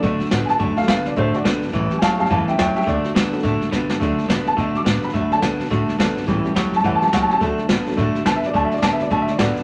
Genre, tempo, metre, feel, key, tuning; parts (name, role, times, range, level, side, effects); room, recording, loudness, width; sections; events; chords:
rockabilly; 212 BPM; 4/4; swing 60% on 8ths; D major; A4 = 440 Hz
dark upright piano; accompaniment; 0.0-9.6 s; F#3 to D6; -24 LUFS; equal
picked steel-string acoustic guitar; accompaniment; 0.0-9.6 s; A2 to A4; -31 LUFS; equal
clean electric guitar; riff; 0.0-9.6 s; A2 to B3; -24 LUFS; equal
upright bass; bass; 0.0-9.6 s; G1 to B2; -30 LUFS; equal
jazz brush drum kit; drums; 0.0-9.6 s; hi-hat, kick drum, snare drum; -25 LUFS; equal
wet studio reverb, RT60 0.6 s; -19 LUFS; mono
0.0-4.0 A section; 4.0-9.6 A section
upright piano solo 0.0-9.6; drum fill 3.7
0.0 D; 1.7 A7; 2.9 D; 6.3 A7; 7.4 D